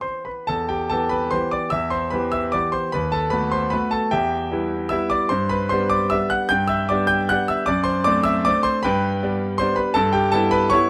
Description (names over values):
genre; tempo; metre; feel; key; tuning
classical, piano waltz; 128-167 BPM; 3/4; rubato; E minor; A4 = 440 Hz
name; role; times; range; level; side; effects
bright concert grand piano; solo; 0.0-10.9 s; D#2 to G6; -21 LUFS; equal; none
room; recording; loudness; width
light reverb; lossy compression artefacts; -21 LUFS; mono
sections
0.5-10.9 A section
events
none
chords
0.5 Em; 2.9 B7/D#; 4.1 Em; 5.3 G; 7.7 D7/F#; 8.9 G; 10.0 Em/G